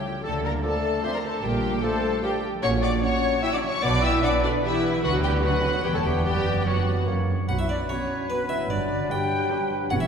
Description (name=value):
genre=cinematic, playful, whimsical film cue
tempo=150 BPM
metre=3/4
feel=straight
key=B minor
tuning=A4 = 440 Hz
part: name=rich studio violin section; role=melody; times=0.0-10.0 s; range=B4 to E6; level=-33 LUFS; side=left 3 dB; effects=none
part: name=breathy clarinet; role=second line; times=0.0-10.1 s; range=B3 to E5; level=-34 LUFS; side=left 2 dB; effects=none
part: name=hollow concert flute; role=second line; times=0.0-10.1 s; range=F#4 to G5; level=-31 LUFS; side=left 2 dB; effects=none
part: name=rich studio violin section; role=second line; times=0.0-9.8 s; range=D4 to E5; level=-34 LUFS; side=left 3 dB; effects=none
part: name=warm studio viola section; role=accompaniment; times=0.0-9.8 s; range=F#3 to E5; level=-32 LUFS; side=equal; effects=none
part: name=dark French horn section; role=sustained chords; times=0.0-10.1 s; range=D3 to G4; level=-30 LUFS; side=left 1 dB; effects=none
part: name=concert harp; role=arpeggios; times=0.0-10.1 s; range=E2 to D6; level=-33 LUFS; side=left 3 dB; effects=none
part: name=rich studio double bass section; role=bass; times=0.2-10.1 s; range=E1 to D2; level=-29 LUFS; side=right 2 dB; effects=none
part: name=warm studio cello section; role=bass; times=0.2-10.1 s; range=E2 to D3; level=-31 LUFS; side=right 4 dB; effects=none
part: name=clear oboe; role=second line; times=0.6-10.1 s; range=B4 to D5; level=-35 LUFS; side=right 2 dB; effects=none
part: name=mellow bassoon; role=accompaniment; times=0.6-10.1 s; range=E3 to B3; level=-34 LUFS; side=right 1 dB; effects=none
part: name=harpsichord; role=melody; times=7.5-10.1 s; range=B4 to G5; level=-35 LUFS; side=equal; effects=none
room=wet concert hall reverb, RT60 2.2 s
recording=recorded in a church or concert hall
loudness=-22 LUFS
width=side -6 dB against mid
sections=0.0-7.5 A section; 7.5-10.1 B section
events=none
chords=0.2 Dm; 1.4 Bb; 2.6 F#/A#; 3.8 B5; 5.0 Bm/D; 5.8 C#m7b5/E; 6.3 Bm/F#; 7.1 F#; 7.5 Bm; 8.7 Gmaj7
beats=| 0.24 0.64 1.04 | 1.44 1.83 2.23 | 2.63 3.03 3.43 | 3.83 4.24 4.64 | 5.04 5.44 5.84 | 6.25 6.67 7.08 | 7.49 7.89 8.29 | 8.70 9.11 9.51 | 9.90